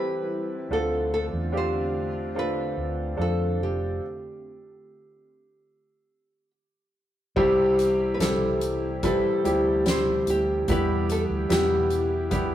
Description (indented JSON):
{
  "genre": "pop ballad",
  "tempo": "72 BPM",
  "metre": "4/4",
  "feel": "straight",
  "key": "C major",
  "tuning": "A4 = 440 Hz",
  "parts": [
    { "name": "nylon-string guitar", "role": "melody", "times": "0.0-12.5 s", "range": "G4 to C5", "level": "-31 LUFS", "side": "right 1 dB", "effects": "none" },
    { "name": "clear concert grand piano", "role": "accompaniment", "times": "0.0-12.5 s", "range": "C3 to B4", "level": "-24 LUFS", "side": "equal", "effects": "none" },
    { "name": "airy breathy pad", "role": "sustained chords", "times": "0.0-12.5 s", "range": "B2 to B4", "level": "-36 LUFS", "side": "equal", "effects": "chorus" },
    { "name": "vintage muted fingered electric bass", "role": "bass", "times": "0.0-12.5 s", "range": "F1 to F2", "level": "-30 LUFS", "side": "equal", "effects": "none" },
    { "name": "soft-mallet drum kit", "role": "drums", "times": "7.4-12.5 s", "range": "crash cymbal, hi-hat, kick drum, snare drum", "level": "-29 LUFS", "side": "equal", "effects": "none" }
  ],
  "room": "moderate stone room reverb, RT60 1.4 s",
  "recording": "rough rehearsal-room recording",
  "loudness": "-22 LUFS",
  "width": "side -11 dB against mid",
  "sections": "0.0-7.4 A section; 7.4-12.5 B section",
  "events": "stop 4.0-7.4",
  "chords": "0.0 Cmaj7; 0.7 Dm7; 4.0 N.C.; 7.4 C; 10.7 Em",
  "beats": "| 0.71 1.53 2.35 3.18 | 4.01 4.84 5.68 6.53 | 7.37 8.20 9.03 9.86 | 10.69 11.50 12.32"
}